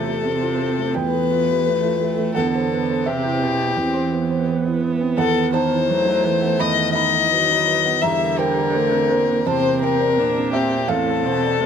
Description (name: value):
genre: neoclassical piano and strings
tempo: 85 BPM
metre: 4/4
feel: rubato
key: unclear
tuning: A4 = 444 Hz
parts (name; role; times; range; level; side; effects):
- dark violin; melody; 0.0-11.7 s; G4 to E5; -20 LUFS; left 7 dB; none
- dark cello; second line; 0.0-11.7 s; A2 to F#3; -26 LUFS; right 7 dB; none
- dark viola; accompaniment; 0.0-11.7 s; F#3 to D4; -24 LUFS; right 3 dB; none
- felt-muted upright piano; accompaniment; 0.0-11.7 s; E2 to B5; -24 LUFS; right 4 dB; none
room: light reverb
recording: none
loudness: -17 LUFS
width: side -7 dB against mid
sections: 0.0-11.7 A section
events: none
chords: 0.0 Fmaj7/E; 2.4 Cmaj7/E; 5.2 B7/E; 8.0 C7/E; 10.9 Fmaj7/E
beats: 0.24 0.95 1.66 | 2.36 3.07 3.77 4.48 | 5.18 5.88 6.59 7.30 | 8.03 8.74 9.46 10.18 | 10.90 11.62